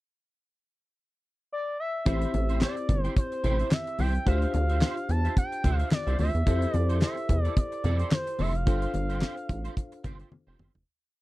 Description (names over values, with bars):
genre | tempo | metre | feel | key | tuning
early-eighties boogie funk | 109 BPM | 4/4 | swing 56% on 16ths | A minor | A4 = 440 Hz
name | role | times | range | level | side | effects
expressive portamento lead | melody | 1.5-10.3 s | C5 to A5 | -33 LUFS | equal | chorus
mellow tine electric piano | accompaniment | 2.1-10.8 s | C4 to C5 | -36 LUFS | left 4 dB | none
electric guitar at the edge of break-up | riff | 2.1-10.8 s | C4 to G5 | -38 LUFS | right 5 dB | ensemble chorus
rubbery square bass | bass | 2.1-10.8 s | F1 to F2 | -26 LUFS | equal | none
damped 70s drum kit | drums | 2.1-10.9 s | handclaps, hi-hat, kick drum, snare drum, toms | -25 LUFS | equal | none
congas | percussion | 2.3-10.7 s | none | -35 LUFS | left 2 dB | none
room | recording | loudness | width
little or no reverb | dry, close 1970s-style studio recording | -25 LUFS | side -18 dB against mid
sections
0.0-2.1 pickup bar; 2.1-10.9 verse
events
fade-out 8.7-10.9; drum fill 10.3-10.9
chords
0.0 N.C.; 2.1 Am7; 4.3 Dm11; 6.5 Fmaj7; 8.7 G7sus4